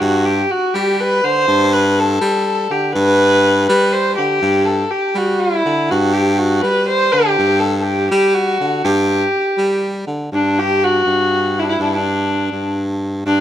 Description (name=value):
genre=Persian modal ensemble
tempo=82 BPM (dotted quarters)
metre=6/8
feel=straight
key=G dastgah mahur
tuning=A4 = 440 Hz
part: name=rich kamancheh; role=melody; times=0.0-13.4 s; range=D4 to C5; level=-15 LUFS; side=left 1 dB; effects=none
part: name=breathy baritone saxophone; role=bass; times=0.0-13.4 s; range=G2 to G3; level=-18 LUFS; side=equal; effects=none
room=light reverb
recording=close, detailed microphones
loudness=-13 LUFS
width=side -11 dB against mid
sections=0.0-10.3 A section; 10.3-13.4 B section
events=none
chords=none